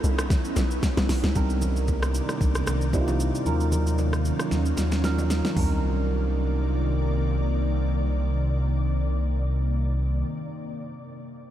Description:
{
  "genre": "amapiano",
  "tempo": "114 BPM",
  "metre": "4/4",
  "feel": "swing 55% on 16ths",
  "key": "C minor",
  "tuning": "A4 = 438 Hz",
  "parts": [
    { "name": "ethereal airy pad", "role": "sustained chords", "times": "0.0-10.2 s", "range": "C3 to D5", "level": "-30 LUFS", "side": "left 1 dB", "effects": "ensemble chorus, built-in reverb, sidechain pumping" },
    { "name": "tight log drum bass", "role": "bass", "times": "0.0-1.3 s", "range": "Cb2 to Db2", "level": "-25 LUFS", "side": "equal", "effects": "none" },
    { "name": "smooth R&B drum kit", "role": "drums", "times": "0.0-5.7 s", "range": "hi-hat, kick drum, rim click, shaker, snare drum, toms", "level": "-28 LUFS", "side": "equal", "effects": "none" },
    { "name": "bongos and congas", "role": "percussion", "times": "0.2-5.8 s", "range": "none", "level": "-37 LUFS", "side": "left 1 dB", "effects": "none" },
    { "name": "tine electric piano", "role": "accompaniment", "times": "1.4-11.5 s", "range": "Gb3 to Bb4", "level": "-31 LUFS", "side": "right 3 dB", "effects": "phaser" },
    { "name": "sub bass with octave", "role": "bass", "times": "1.4-10.2 s", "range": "C2 to Eb2", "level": "-25 LUFS", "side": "equal", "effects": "none" }
  ],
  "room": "light reverb",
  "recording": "none",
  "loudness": "-22 LUFS",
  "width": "side -12 dB against mid",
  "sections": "0.0-1.4 A section; 1.4-5.6 B section; 5.6-9.8 C section",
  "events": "drop 0.0-1.4; drum fill 0.3-1.4, 4.5-5.6",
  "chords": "0.0 Dbm9; 1.4 Cm9; 3.5 Ebm9; 5.6 Cm9",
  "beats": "0.30 0.83 | 1.35 1.88 2.41 2.93 | 3.46 3.99 4.51 5.04 | 5.57 6.09 6.62 7.14 | 7.67 8.20 8.72 9.25"
}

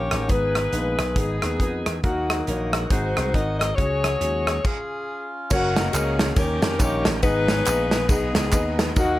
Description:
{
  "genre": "uptempo gospel",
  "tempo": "138 BPM",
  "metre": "4/4",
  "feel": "swing 60% on 8ths",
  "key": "unclear",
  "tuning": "A4 = 440 Hz",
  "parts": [
    { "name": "clear saxophone section", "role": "melody", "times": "0.0-9.2 s", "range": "A#3 to D#5", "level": "-25 LUFS", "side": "left 2 dB", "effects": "none" },
    { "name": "warm concert grand piano", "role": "accompaniment", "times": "0.0-9.2 s", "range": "G#2 to D#5", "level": "-28 LUFS", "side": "left 1 dB", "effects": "none" },
    { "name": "bright tonewheel organ", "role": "sustained chords", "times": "0.0-9.2 s", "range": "D#3 to G#4", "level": "-35 LUFS", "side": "right 3 dB", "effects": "slow rotary speaker, overdrive" },
    { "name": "slap bass with an envelope filter", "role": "bass", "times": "0.0-9.2 s", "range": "F#1 to E#2", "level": "-27 LUFS", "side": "equal", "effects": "none" },
    { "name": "natural country drum kit", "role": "drums", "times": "0.1-9.1 s", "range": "crash cymbal, hi-hat, kick drum, ride cymbal, rim click, snare drum", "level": "-23 LUFS", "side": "equal", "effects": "none" },
    { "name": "tambourine and handclaps", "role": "percussion", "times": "5.5-9.1 s", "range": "none", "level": "-32 LUFS", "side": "right 3 dB", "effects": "none" }
  ],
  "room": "little or no reverb",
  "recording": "none",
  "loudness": "-20 LUFS",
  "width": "side -15 dB against mid",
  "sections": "0.0-5.5 A section; 5.5-9.2 B section",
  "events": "stop 4.6-5.5",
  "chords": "0.3 G#m; 2.0 D#m; 2.9 G#7; 3.8 C#sus4; 4.6 C#; 5.5 F#; 6.4 D#7; 7.2 G#m",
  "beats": "| 0.30 0.73 1.17 1.60 | 2.04 2.47 2.91 3.34 | 3.78 4.21 4.65 5.08 | 5.51 5.95 6.38 6.81 | 7.25 7.68 8.11 8.54 | 8.97"
}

